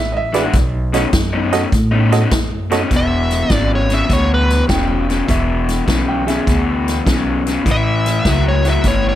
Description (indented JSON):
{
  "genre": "electric blues shuffle",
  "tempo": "101 BPM",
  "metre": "4/4",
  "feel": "swing 68% on 8ths",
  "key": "E major",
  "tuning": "A4 = 440 Hz",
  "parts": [
    { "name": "warm upright piano", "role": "second line", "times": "0.0-0.5, 4.7-6.6 s", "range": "G#4 to G5", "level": "-24 LUFS", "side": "right 3 dB", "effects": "slapback echo, plate reverb" },
    { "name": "upright bass", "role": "bass", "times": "0.0-9.2 s", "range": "E1 to A2", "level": "-18 LUFS", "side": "equal", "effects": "none" },
    { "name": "barky reed electric piano", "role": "accompaniment", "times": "0.3-2.8 s", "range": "F#4 to D#5", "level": "-21 LUFS", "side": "right 8 dB", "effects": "overdrive, fast tremolo, plate reverb" },
    { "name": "raw garage guitar", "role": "riff", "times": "0.3-9.2 s", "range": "E2 to F#4", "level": "-18 LUFS", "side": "left 4 dB", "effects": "overdrive" },
    { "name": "swinging big-band drum kit", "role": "drums", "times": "0.3-9.0 s", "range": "hi-hat, kick drum, snare drum", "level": "-20 LUFS", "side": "equal", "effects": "none" },
    { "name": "dark smooth lead guitar", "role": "melody", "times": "3.0-9.2 s", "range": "B4 to E5", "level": "-19 LUFS", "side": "right 1 dB", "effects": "overdrive, plate reverb" }
  ],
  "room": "light reverb",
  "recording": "none",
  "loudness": "-13 LUFS",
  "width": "side -12 dB against mid",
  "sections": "0.0-2.9 A section; 2.9-9.2 B section",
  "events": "upright piano solo 0.0-2.9",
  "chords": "0.0 E9; 0.5 B9; 2.9 E7(no3); 7.7 A7"
}